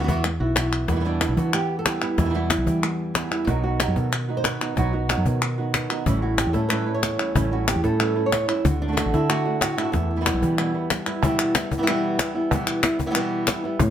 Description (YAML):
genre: flamenco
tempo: 186 BPM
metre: 4/4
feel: straight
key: E minor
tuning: A4 = 440 Hz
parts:
  - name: flamenco guitar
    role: melody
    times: 0.0-13.9 s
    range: E2 to C#5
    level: -25 LUFS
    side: right 1 dB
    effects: none
  - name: woody fretless electric bass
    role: bass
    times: 0.0-11.0, 13.8-13.9 s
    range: A1 to E3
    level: -25 LUFS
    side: equal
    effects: none
  - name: cajon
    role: percussion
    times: 0.1-13.9 s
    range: none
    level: -26 LUFS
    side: left 3 dB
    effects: none
  - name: palmas hand claps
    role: percussion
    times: 0.2-13.9 s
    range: none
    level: -26 LUFS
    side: left 3 dB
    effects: none
  - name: flamenco guitar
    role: stabs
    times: 0.9-11.2 s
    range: B2 to F#4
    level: -28 LUFS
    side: right 5 dB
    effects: tape echo
room: light reverb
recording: none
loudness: -20 LUFS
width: side -10 dB against mid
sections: 0.9-11.2 A section; 11.2-13.9 B section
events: none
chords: 0.0 Esus2; 0.9 Em; 3.5 B; 6.1 A7; 8.6 D; 9.9 Em